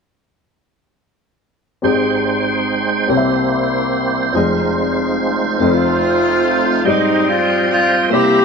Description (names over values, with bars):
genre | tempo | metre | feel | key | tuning
gospel | 48 BPM (dotted quarters) | 6/8 | straight | Ab major | A4 = 439 Hz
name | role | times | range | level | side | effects
warm upright piano | accompaniment | 1.8-8.4 s | F1 to E5 | -18 LUFS | left 3 dB | none
tonewheel organ | sustained chords | 1.8-8.4 s | G3 to Bb5 | -18 LUFS | right 3 dB | chorus vibrato, slow rotary speaker
warm alto saxophone | melody | 5.6-8.4 s | Eb4 to G4 | -20 LUFS | right 1 dB | none
warm saxophone section | melody | 5.6-8.4 s | G3 to G4 | -16 LUFS | left 1 dB | none
room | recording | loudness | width
moderate studio reverb, RT60 0.7 s | band playing live in one room | -13 LUFS | side -5 dB against mid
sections
1.8-6.9 A section; 6.9-8.4 B section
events
none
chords
1.8 Abmaj7; 3.1 C7; 4.3 Fm7; 5.6 F7; 6.9 Abmaj7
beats
| 1.83 3.09 | 4.34 5.60 | 6.86 8.11